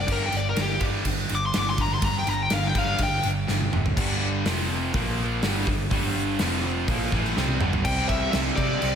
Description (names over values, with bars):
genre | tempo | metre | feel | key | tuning
hard rock | 124 BPM | 4/4 | straight | G dorian | A4 = 440 Hz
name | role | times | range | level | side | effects
biting lead guitar | melody | 0.0-3.3, 7.8-9.0 s | G4 to D6 | -27 LUFS | left 3 dB | overdrive
high-gain distorted guitar | riff | 0.0-9.0 s | F2 to C4 | -29 LUFS | right 2 dB | distortion
hollow-body short-scale picked electric bass | bass | 0.0-9.0 s | F1 to C3 | -29 LUFS | equal | none
gated 80s drum kit | drums | 0.1-8.9 s | crash cymbal, hi-hat, kick drum, ride cymbal, snare drum, toms | -27 LUFS | equal | none
overdriven electric guitar | riff | 4.0-9.0 s | F2 to C4 | -30 LUFS | right 1 dB | slapback echo
room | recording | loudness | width
moderate lush hall reverb, RT60 2.1 s | big arena sound | -22 LUFS | side -8 dB against mid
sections
0.0-4.0 A section; 4.0-7.9 B section; 7.9-9.0 C section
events
lead electric guitar solo 0.0-4.0; drum fill 3.5-4.0, 7.4-7.9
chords
0.1 G5; 4.5 F5; 4.9 Bb5; 5.4 G5; 6.4 F5; 6.9 Gm; 7.9 C